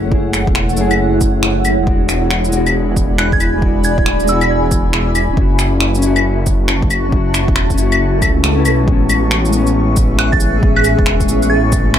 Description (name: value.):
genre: future garage.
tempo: 137 BPM.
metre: 4/4.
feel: swing 64% on 16ths.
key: unclear.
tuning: A4 = 441 Hz.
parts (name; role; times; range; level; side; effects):
mellow electric guitar; accompaniment; 0.0-12.0 s; G#3 to B4; -19 LUFS; left 4 dB; sidechain pumping, dub echo.
granular cloud pad; sustained chords; 0.0-12.0 s; E4 to C#6; -20 LUFS; right 1 dB; built-in reverb, sidechain pumping.
swelling detuned saw bass; bass; 0.0-12.0 s; D1 to C#2; -16 LUFS; equal; sidechain pumping.
electronic kick drum; drums; 0.1-11.8 s; none; -16 LUFS; equal; none.
electronic finger snaps, shaker and claves; drums; 0.3-12.0 s; none; -18 LUFS; left 1 dB; none.
soft synth bell; melody; 3.2-4.5, 10.2-11.7 s; E6 to A6; -22 LUFS; right 3 dB; chorus, vintage 12-bit sampler grit, digital delay.
swell; sound effects; 8.2-8.9 s; none; -22 LUFS; right 4 dB; none.
room: light reverb, digital ambience.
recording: none.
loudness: -11 LUFS.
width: side -10 dB against mid.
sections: 0.0-8.9 A section; 8.9-12.0 B section.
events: swell 8.2-8.9.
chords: 0.0 F#m7; 1.9 E7; 5.4 A69; 8.9 Amaj7.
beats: | 0.12 0.56 0.99 1.43 | 1.87 2.31 2.75 3.18 | 3.62 4.06 4.50 4.93 | 5.37 5.81 6.25 6.69 | 7.12 7.56 8.00 8.44 | 8.88 9.31 9.75 10.19 | 10.63 11.07 11.50 11.94.